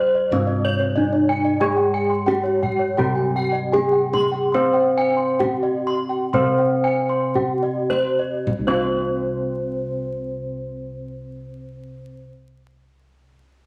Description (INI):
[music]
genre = Balinese gamelan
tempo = 51-93 BPM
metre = 4/4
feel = straight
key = C pelog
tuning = A4 = 439 Hz
[part]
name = gamelan-type bronze metallophone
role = melody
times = 0.0-12.3 s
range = C4 to C5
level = -24 LUFS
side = equal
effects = none
[part]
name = gamelan-type bronze metallophone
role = accompaniment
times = 0.0-12.3 s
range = C3 to C4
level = -31 LUFS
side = equal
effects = none
[part]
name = gamelan-type bronze metallophone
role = arpeggios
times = 0.0-12.3 s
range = C5 to C6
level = -28 LUFS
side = equal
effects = none
[part]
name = gamelan-type bossed gongs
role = bass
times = 0.0-12.2 s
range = C2 to C5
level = -31 LUFS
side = equal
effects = none
[part]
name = gamelan-type bronze metallophone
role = arpeggios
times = 0.1-12.3 s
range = C5 to C6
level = -31 LUFS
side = equal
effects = none
[part]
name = kendang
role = percussion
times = 0.3-9.0 s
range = none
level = -33 LUFS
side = equal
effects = none
[sound]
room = wet large studio reverb, RT60 1.2 s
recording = vinyl crackle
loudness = -21 LUFS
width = mono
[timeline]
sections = 0.0-8.5 A section; 8.5-13.2 B section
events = slowing down 1.6-8.5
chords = none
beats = 0.32 0.97 | 1.61 2.28 2.98 3.73 | 4.54 5.40 6.34 7.35 | 8.47 9.64 10.82 11.99